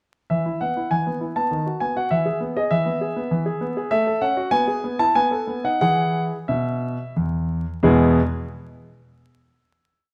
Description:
classical-period piano sonatina; 89-100 BPM; 3/4; rubato; E major; A4 = 440 Hz
warm concert grand piano; solo; 0.3-8.2 s; E2 to A5; -22 LUFS; equal
moderate recital hall reverb, RT60 1.5 s; vinyl crackle; -22 LUFS; mono
0.3-7.8 A section; 7.8-9.8 final chord
slowing down 3.0-7.8
0.3 E5; 1.5 B/D#; 2.1 E; 3.9 F#m/A; 4.5 E/B; 5.2 B7; 5.8 E
| 0.30 0.91 1.52 | 2.12 2.72 3.32 | 3.92 4.53 5.16 | 5.81 6.49 7.16 | 7.83

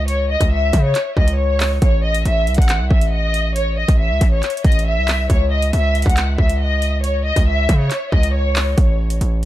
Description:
hip hop, drill; 138 BPM; 4/4; half-time; C# harmonic minor; A4 = 440 Hz
warm studio violin section; melody; 0.0-8.7 s; C#5 to F#5; -21 LUFS; left 2 dB; low-pass filter, digital delay
distorted 808-style bass; bass; 0.0-9.5 s; A1 to C#3; -18 LUFS; equal; distortion
drill drum kit; drums; 0.1-9.5 s; handclaps, hi-hat, kick drum; -17 LUFS; equal
digital ambience; dark, warm production; -14 LUFS; side -14 dB against mid
0.0-9.5 A section
0.0 N.C.; 1.8 A5; 5.3 C#madd9; 8.8 N.C.
| 0.08 0.52 0.95 1.39 | 1.82 2.25 2.69 3.12 | 3.56 3.99 4.43 4.86 | 5.30 5.73 6.17 6.60 | 7.04 7.47 7.91 8.34 | 8.78 9.21

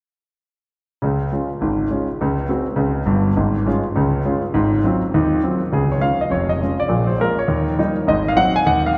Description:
jazz, stride piano; 204 BPM; 4/4; swing 63% on 8ths; Db major; A4 = 442 Hz
warm concert grand piano; solo; 1.0-9.0 s; F1 to Ab5; -19 LUFS; equal
wet cathedral reverb, RT60 4.6 s; in a vast, echoing space; -19 LUFS; mono
1.0-5.7 A section; 5.7-9.0 B section
1.0 Db; 2.2 Ab7/Db; 3.4 Db/Ab; 4.5 Ab6; 5.7 Db; 6.3 Db/F; 6.9 Bb5; 7.5 Eb7; 8.1 Ab7
| 1.00 1.30 1.60 1.89 | 2.19 2.48 2.78 3.07 | 3.37 3.66 3.96 4.25 | 4.55 4.84 5.14 5.43 | 5.72 6.02 6.31 6.61 | 6.90 7.20 7.49 7.78 | 8.08 8.37 8.66 8.96

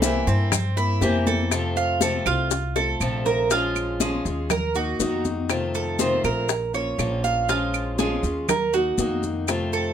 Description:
latin, Cuban son and guajira; 120 BPM; 4/4; straight; Bb minor; A4 = 441 Hz
nylon-string guitar; melody; 0.0-0.5 s; Bb4; -33 LUFS; right 5 dB
picked acoustic archtop guitar; accompaniment; 0.0-9.9 s; C3 to Gb4; -27 LUFS; left 3 dB
Cuban tres; arpeggios; 0.0-9.9 s; C4 to F5; -25 LUFS; right 4 dB
upright bass; bass; 0.0-9.9 s; Bb1 to G2; -27 LUFS; equal
bongos; percussion; 0.0-9.7 s; -30 LUFS; left 9 dB
congas; percussion; 0.0-9.9 s; -30 LUFS; left 1 dB
maracas; percussion; 0.0-9.9 s; -31 LUFS; left 11 dB
claves; percussion; 0.5-9.7 s; -30 LUFS; right 8 dB
light reverb; minimal, uncompressed stereo recording; -21 LUFS; side -9 dB against mid
0.0-3.5 A section; 3.5-9.9 B section
drum fill 2.5-3.5
0.0 C7; 1.5 F; 3.5 Bbm7; 4.5 Ebm; 5.5 F7; 6.5 Bbm; 7.5 Bbm7; 8.5 Ebm
0.03 0.52 1.02 | 1.51 2.01 2.51 3.01 | 3.50 4.00 4.50 5.00 | 5.50 5.99 6.49 6.99 | 7.49 7.99 8.48 8.98 | 9.48

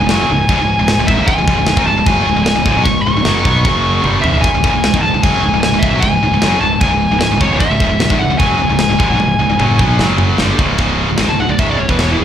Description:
heavy metal; 151 BPM; 4/4; straight; C# minor; A4 = 437 Hz
high-gain lead guitar; melody; 0.0-12.2 s; E4 to C#6; -16 LUFS; left 1 dB; distortion
heavy high-gain guitar; riff; 0.0-12.2 s; C#2 to B3; -16 LUFS; equal; distortion, slapback echo
fuzz fingered electric bass; bass; 0.0-12.2 s; C#1 to B1; -18 LUFS; equal; overdrive
tight metal drum kit; drums; 0.1-12.1 s; china cymbal, crash cymbal, kick drum, snare drum, toms; -17 LUFS; equal
studio reverb; live gig heard through the venue's PA, club reverb; -11 LUFS; side -9 dB against mid
0.0-10.8 A section; 10.8-12.2 B section
drum fill 4.0-4.4, 9.2-10.8; lead electric guitar solo 10.8-12.2
0.0 C#5; 3.7 F#5; 4.0 C#5; 10.0 F#5; 10.4 C#5; 10.8 C#m
0.09 0.49 0.88 | 1.28 1.68 2.07 2.46 | 2.86 3.26 3.65 4.05 | 4.44 4.84 5.23 5.63 | 6.03 6.42 6.82 7.21 | 7.61 8.01 8.41 8.80 | 9.20 9.60 10.00 10.39 | 10.79 11.19 11.59 11.99

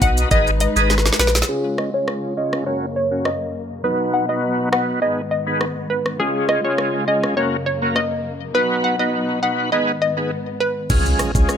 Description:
dancehall; 102 BPM; 4/4; straight; A4 = 439 Hz
hollow square pluck; melody; 0.0-10.7 s; G#4 to F#5; -22 LUFS; equal; chorus, low-pass filter
overdriven tonewheel organ; accompaniment; 0.0-11.6 s; G#3 to D#5; -22 LUFS; equal; chorus vibrato, slow rotary speaker, low-pass filter
dark studio string section; sustained chords; 0.0-10.9 s; F#2 to B4; -26 LUFS; left 2 dB; sidechain pumping, low-pass filter
punchy sub bass; bass; 0.0-1.4, 10.9-11.5 s; G#1 to C#2; -20 LUFS; equal
island pop drum kit; drums; 0.0-11.6 s; crash cymbal, hi-hat, kick drum, rim click, shaker, snare drum; -20 LUFS; equal
impact; sound effects; 10.9-11.6 s; -26 LUFS; equal
light reverb; -17 LUFS; side -8 dB against mid
0.0-1.5 A section; 1.5-10.9 B section
drum fill 0.9-1.5; filter sweep 1.5-10.9; break 10.3-10.9; impact 10.9-11.6
0.3 G#m; 1.5 C#; 2.7 F#; 3.8 B; 5.0 G#m; 6.2 C#; 7.4 F#; 8.5 B; 9.7 G#m; 10.9 C#
0.31 0.90 | 1.49 2.08 2.67 3.25 | 3.84 4.43 5.02 5.61 | 6.20 6.78 7.37 7.96 | 8.55 9.14 9.72 10.31 | 10.90 11.49

